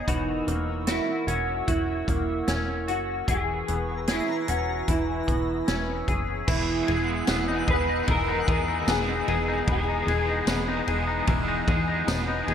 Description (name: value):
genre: dream pop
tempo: 75 BPM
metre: 4/4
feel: straight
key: E lydian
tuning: A4 = 438 Hz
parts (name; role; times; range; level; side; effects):
- mellow electric guitar; melody; 0.0-12.1 s; D#4 to B4; -29 LUFS; right 1 dB; analog chorus, ping-pong delay
- warbly tape-like pad; sustained chords; 0.0-12.5 s; B3 to F#6; -34 LUFS; right 2 dB; chorus, built-in reverb
- clean electric guitar; arpeggios; 0.0-12.5 s; E3 to G#4; -30 LUFS; left 5 dB; ensemble chorus, ping-pong delay
- plucky analog bass; bass; 0.0-12.5 s; E1 to E2; -30 LUFS; equal; none
- vintage drum kit; drums; 0.1-12.5 s; crash cymbal, hi-hat, kick drum, ride cymbal, snare drum, tambourine; -29 LUFS; equal; gated reverb
- twinkling granular texture; texture; 3.9-12.5 s; F#5 to A#5; -40 LUFS; equal; built-in reverb, ping-pong delay
- crunchy overdriven guitar; accompaniment; 6.5-12.5 s; E2 to G#4; -32 LUFS; right 4 dB; tremolo, wide subtle chorus
room: moderate plate reverb, RT60 2.7 s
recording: bright 1980s-style digital production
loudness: -23 LUFS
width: side -8 dB against mid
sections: 0.0-6.5 A section; 6.5-12.5 B section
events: none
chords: 0.1 F#7/E; 3.3 C#m7/E; 4.9 E6; 6.5 Emaj7